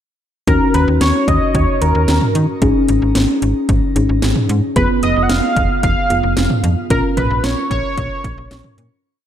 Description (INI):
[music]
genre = synth-pop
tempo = 112 BPM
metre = 4/4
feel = straight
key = Eb minor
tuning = A4 = 440 Hz
[part]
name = octave-doubled lead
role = melody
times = 0.5-8.7 s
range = Bb4 to Gb5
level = -20 LUFS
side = right 1 dB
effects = chorus, analog delay, shimmer reverb
[part]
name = muted felt-like synth keys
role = accompaniment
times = 0.5-9.0 s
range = Cb4 to Bb4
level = -19 LUFS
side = left 1 dB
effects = chorus, shimmer reverb
[part]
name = slap-like FM bass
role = bass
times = 0.5-8.9 s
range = F1 to Eb3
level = -17 LUFS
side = equal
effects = none
[part]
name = house drum kit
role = drums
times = 0.5-8.9 s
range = hi-hat, kick drum, snare drum, toms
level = -19 LUFS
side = equal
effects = overdrive
[sound]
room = wet plate reverb, RT60 1.3 s, digital ambience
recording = dreamy mix soaked in reverb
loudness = -13 LUFS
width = side -10 dB against mid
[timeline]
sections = 0.5-9.0 verse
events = fade-out 6.9-9.0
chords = 0.5 Ebm7; 2.6 Absus4; 4.8 Fdim; 6.9 Bbm